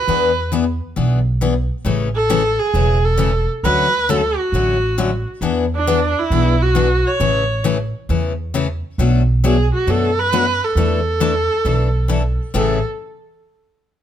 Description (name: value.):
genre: acoustic string swing (jazz manouche).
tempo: 135 BPM.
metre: 4/4.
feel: swing 65% on 8ths.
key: A major.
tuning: A4 = 440 Hz.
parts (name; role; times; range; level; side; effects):
clear viola; melody; 0.0-12.8 s; D4 to C#5; -18 LUFS; right 2 dB; plate reverb.
picked steel-string acoustic guitar; accompaniment; 0.1-12.8 s; A2 to A4; -20 LUFS; left 6 dB; none.
upright bass; bass; 0.1-12.8 s; E1 to F#2; -19 LUFS; right 1 dB; none.
room: light reverb.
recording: none.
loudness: -15 LUFS.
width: side -10 dB against mid.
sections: 0.0-9.0 A section; 9.0-12.5 B section; 12.5-14.0 C section.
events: none.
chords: 0.1 E7; 1.9 Amaj7; 3.6 Dmaj7; 5.4 E7; 7.2 Amaj7; 9.0 Bm7; 10.8 E7sus4; 12.5 Amaj7.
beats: | 0.07 0.52 0.96 1.41 | 1.86 2.30 2.75 3.19 | 3.64 4.08 4.53 4.98 | 5.42 5.87 6.31 6.76 | 7.21 7.65 8.10 8.54 | 8.99 9.43 9.88 10.32 | 10.77 11.21 11.66 12.10 | 12.55.